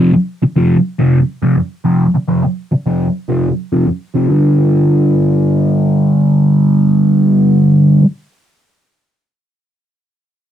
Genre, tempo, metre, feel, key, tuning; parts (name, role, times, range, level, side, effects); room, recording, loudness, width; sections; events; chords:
rock; 104 BPM; 4/4; straight; A4 = 440 Hz
fuzz guitar; solo; 0.0-8.0 s; F2 to G3; -10 LUFS; equal; distortion, phaser, low-pass filter
wet booth ambience, RT60 0.2 s; dry, close 1970s-style studio recording; -10 LUFS; side -10 dB against mid
0.0-4.3 A section; 4.3-6.6 B section
filter sweep on distorted electric guitar 0.0-4.3
0.0 F5; 4.3 G5